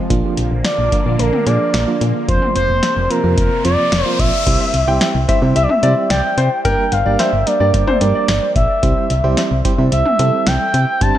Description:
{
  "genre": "synth-pop",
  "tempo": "110 BPM",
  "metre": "4/4",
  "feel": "straight",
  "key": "C mixolydian from 4.5 s",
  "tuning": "A4 = 440 Hz",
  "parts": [
    { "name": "phased analog pad", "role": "sustained chords", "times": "0.0-4.4 s", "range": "C3 to Bb3", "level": "-25 LUFS", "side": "equal", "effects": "phaser, chorus" },
    { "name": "FM electric piano with tremolo", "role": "accompaniment", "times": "0.1-11.2 s", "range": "F3 to C5", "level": "-22 LUFS", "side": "right 4 dB", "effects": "dub echo" },
    { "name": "solid FM bass", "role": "bass", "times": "0.1-11.1 s", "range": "F1 to C3", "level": "-17 LUFS", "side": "equal", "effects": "none" },
    { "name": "electro analog drum machine", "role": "drums", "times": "0.1-11.2 s", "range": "crash cymbal, hi-hat, kick drum, snare drum, toms", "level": "-20 LUFS", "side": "left 1 dB", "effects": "none" },
    { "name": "expressive synth lead", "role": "melody", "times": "0.6-11.2 s", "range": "Bb4 to A5", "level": "-18 LUFS", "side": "equal", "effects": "chorus, dub echo" },
    { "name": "riser", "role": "sound effects", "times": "3.3-4.5 s", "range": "none", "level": "-26 LUFS", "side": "left 3 dB", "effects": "none" },
    { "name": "warm baby grand piano", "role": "second line", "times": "4.6-8.3 s", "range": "Bb4 to G5", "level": "-22 LUFS", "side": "left 2 dB", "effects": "dub echo" }
  ],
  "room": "moderate echo chamber reverb, RT60 2.4 s",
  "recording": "echo-heavy mix",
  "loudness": "-13 LUFS",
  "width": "side -12 dB against mid",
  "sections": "0.0-4.5 A section; 4.5-11.2 B section",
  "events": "riser 3.3-4.5",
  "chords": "0.1 Bb; 2.3 Fsus4; 4.5 C; 6.6 Gm; 8.8 C"
}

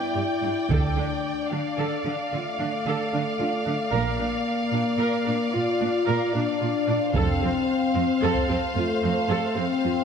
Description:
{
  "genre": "cinematic, epic orchestral film score",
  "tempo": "74 BPM (dotted quarters)",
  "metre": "12/8",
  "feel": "straight",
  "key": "D minor",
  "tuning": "A4 = 442 Hz",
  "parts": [
    { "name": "clear symphonic violin section", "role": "melody", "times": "0.0-10.0 s", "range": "F5 to G5", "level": "-30 LUFS", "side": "equal", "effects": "none" },
    { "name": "warm symphonic violin section", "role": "second line", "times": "0.0-10.0 s", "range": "C5 to D5", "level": "-33 LUFS", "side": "left 1 dB", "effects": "none" },
    { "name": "mellow French horn section", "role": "sustained chords", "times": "0.0-10.0 s", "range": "A3 to F4", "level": "-26 LUFS", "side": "left 4 dB", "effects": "none" },
    { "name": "rich studio viola section", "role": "accompaniment", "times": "0.2-9.9 s", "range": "C4 to Bb4", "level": "-31 LUFS", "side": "right 3 dB", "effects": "none" },
    { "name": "rich symphonic cello section", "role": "bass", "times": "0.2-9.9 s", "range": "F2 to D3", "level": "-30 LUFS", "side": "right 4 dB", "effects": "none" },
    { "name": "rich symphonic double bass section", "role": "bass", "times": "0.7-7.4 s", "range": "F1 to D2", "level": "-29 LUFS", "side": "right 4 dB", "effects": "none" },
    { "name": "solo taiko drums", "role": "drums", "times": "0.7-1.7, 7.1-8.6 s", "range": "none", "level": "-30 LUFS", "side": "right 1 dB", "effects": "none" },
    { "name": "timpani", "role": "percussion", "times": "0.7-1.5 s", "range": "D3", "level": "-33 LUFS", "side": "equal", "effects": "none" }
  ],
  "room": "moderate scoring stage reverb, RT60 1.9 s",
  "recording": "none",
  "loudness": "-22 LUFS",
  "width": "side -7 dB against mid",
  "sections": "0.0-10.0 A section",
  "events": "none",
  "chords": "0.0 G5; 0.7 Dm; 3.9 Bb; 7.1 F"
}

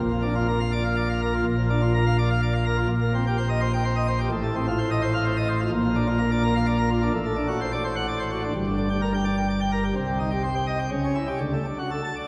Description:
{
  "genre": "classical, organ toccata",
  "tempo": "127 BPM",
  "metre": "3/4",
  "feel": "straight",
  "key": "Bb major",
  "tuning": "A4 = 440 Hz",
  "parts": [
    { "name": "pipe organ, plenum", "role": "solo", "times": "0.0-12.3 s", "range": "G1 to A5", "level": "-24 LUFS", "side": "equal", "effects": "none" }
  ],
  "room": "wet church reverb, RT60 3.6 s",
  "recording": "heard from further back in the room",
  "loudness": "-24 LUFS",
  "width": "mono",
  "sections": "0.0-1.5 A section; 1.5-12.3 A section",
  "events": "none",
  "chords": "0.0 Bb; 2.9 Cm7/Bb; 4.3 F7/A; 5.7 Bb; 7.1 D7/A; 8.5 Gm; 10.0 Cm; 10.9 C#dim; 11.4 D"
}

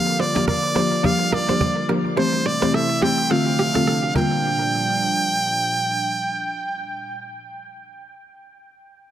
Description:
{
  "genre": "afrobeats",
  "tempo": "106 BPM",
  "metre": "4/4",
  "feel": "swing 58% on 16ths",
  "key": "G dorian",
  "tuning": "A4 = 442 Hz",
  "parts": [
    { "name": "brilliant trumpet", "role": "melody", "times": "0.0-7.2 s", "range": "C5 to G5", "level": "-22 LUFS", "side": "right 1 dB", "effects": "dub echo" },
    { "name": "buzzing marimba with medium mallets", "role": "accompaniment", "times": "0.0-7.2 s", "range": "D3 to G4", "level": "-22 LUFS", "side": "left 2 dB", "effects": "dub echo" },
    { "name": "hollow soft pad", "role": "sustained chords", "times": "0.0-7.2 s", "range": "Bb2 to F4", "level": "-29 LUFS", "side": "right 2 dB", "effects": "chorus" },
    { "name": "kora", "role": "riff", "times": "0.2-4.5 s", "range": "G4 to D5", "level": "-26 LUFS", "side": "right 4 dB", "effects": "dub echo" },
    { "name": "cajon", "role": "drums", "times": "0.2-4.3 s", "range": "none", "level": "-30 LUFS", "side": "equal", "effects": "dub echo" }
  ],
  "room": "light reverb, studio reverb",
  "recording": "echo-heavy mix",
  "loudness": "-18 LUFS",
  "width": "side -11 dB against mid",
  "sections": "0.0-4.4 A section; 4.4-6.7 B section",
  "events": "none",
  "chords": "0.0 Gm7; 2.2 Am7; 3.3 Dm7; 4.2 Gm7"
}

